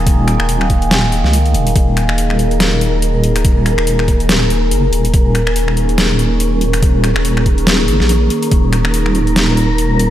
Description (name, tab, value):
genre	deep dubstep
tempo	142 BPM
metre	4/4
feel	swing 57% on 16ths, half-time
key	unclear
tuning	A4 = 440 Hz
part	overtone-sweeping drone	sustained chords	0.0-10.1 s	Eb3 to Bb4	-18 LUFS	equal	chorus, built-in reverb
part	deep soft wobble bass	bass	0.0-10.1 s	Eb1 to Db2	-15 LUFS	equal	chorus
part	dubstep drum kit	drums	0.1-10.1 s	finger snaps, hi-hat, snare drum	-18 LUFS	left 1 dB	overdrive
part	electronic kick drum	drums	0.1-8.6 s	none	-12 LUFS	equal	overdrive
part	wind-like tuned noise texture	texture	2.1-10.1 s	Bb3 to Bb4	-24 LUFS	left 1 dB	built-in reverb
room	moderate lush hall reverb, RT60 1.9 s, digital ambience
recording	dreamy mix soaked in reverb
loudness	-11 LUFS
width	side -12 dB against mid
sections	0.0-10.1 A section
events	none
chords	0.0 Eb5